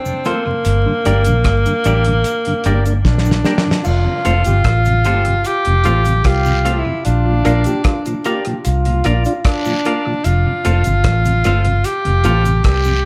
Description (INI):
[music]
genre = roots reggae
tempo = 75 BPM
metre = 4/4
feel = straight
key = F major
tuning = A4 = 440 Hz
[part]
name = breathy tenor saxophone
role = melody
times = 0.0-13.1 s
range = Bb3 to G4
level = -21 LUFS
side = equal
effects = tape echo
[part]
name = mellow tonewheel organ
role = accompaniment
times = 0.1-12.9 s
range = F2 to F4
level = -25 LUFS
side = equal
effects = overdrive, chorus vibrato, slow rotary speaker
[part]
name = cabasa and guiro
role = percussion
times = 0.1-13.1 s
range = none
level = -34 LUFS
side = equal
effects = none
[part]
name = clean electric guitar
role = accompaniment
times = 0.3-12.4 s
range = C4 to F5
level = -28 LUFS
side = equal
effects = spring reverb, tape echo
[part]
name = cloth-damped thuddy drum kit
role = drums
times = 0.3-12.8 s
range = crash cymbal, hi-hat, kick drum, rim click, snare drum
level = -22 LUFS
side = equal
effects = tape echo
[part]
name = vintage muted fingered electric bass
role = bass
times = 0.7-13.1 s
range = F1 to C2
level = -17 LUFS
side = equal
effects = none
[part]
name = mellow trombone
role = second line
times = 3.8-9.8 s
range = F4 to G4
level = -27 LUFS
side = equal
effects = tape echo
[sound]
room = moderate club reverb, RT60 0.7 s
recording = vinyl crackle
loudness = -15 LUFS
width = mono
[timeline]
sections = 0.0-3.9 A section; 3.9-13.1 B section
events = drum fill 3.1-3.9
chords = 0.0 F; 0.7 Gm; 3.9 F; 7.0 Bb; 10.2 F